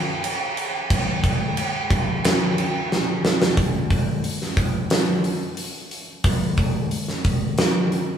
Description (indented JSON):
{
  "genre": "rock",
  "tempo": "90 BPM",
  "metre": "4/4",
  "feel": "straight",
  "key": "none",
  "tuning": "none",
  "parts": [
    { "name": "huge arena drum kit", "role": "drums", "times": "0.2-8.1 s", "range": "crash cymbal, hi-hat, kick drum, snare drum", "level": "-20 LUFS", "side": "equal", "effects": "none" }
  ],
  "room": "light reverb",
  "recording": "band playing live in one room, small room reverb",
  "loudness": "-19 LUFS",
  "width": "side -8 dB against mid",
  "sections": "0.0-3.6 A section; 3.6-8.2 B section",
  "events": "drum fill 2.9-3.6",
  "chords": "none"
}